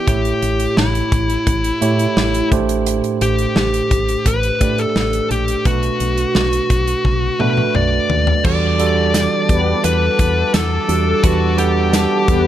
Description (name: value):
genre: 1980s-style pop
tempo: 86 BPM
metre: 4/4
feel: straight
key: E minor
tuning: A4 = 440 Hz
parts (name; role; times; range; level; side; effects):
- fuzz lead guitar; melody; 0.0-12.5 s; E4 to D5; -19 LUFS; left 2 dB; distortion, tape echo
- tine electric piano; accompaniment; 0.0-12.5 s; A2 to F#5; -20 LUFS; right 6 dB; none
- solid FM bass; bass; 0.1-12.5 s; A1 to B2; -20 LUFS; equal; none
- modern studio drum kit; drums; 0.1-12.4 s; crash cymbal, hi-hat, kick drum, snare drum, tambourine, toms; -19 LUFS; equal; none
- crunchy overdriven guitar; accompaniment; 8.4-12.5 s; E3 to E4; -29 LUFS; equal; none
- sweeping resonant pad; sustained chords; 8.4-12.5 s; A4 to D6; -25 LUFS; left 4 dB; chorus
- mellow synth brass; stabs; 9.5-12.5 s; B3 to B4; -22 LUFS; left 5 dB; chorus
room: light reverb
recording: none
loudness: -14 LUFS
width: side -12 dB against mid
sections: 0.0-8.4 A section; 8.4-12.5 B section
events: drum fill 7.1-8.4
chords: 0.1 A7; 2.5 D7sus4/A; 5.7 Bm7; 8.4 Em11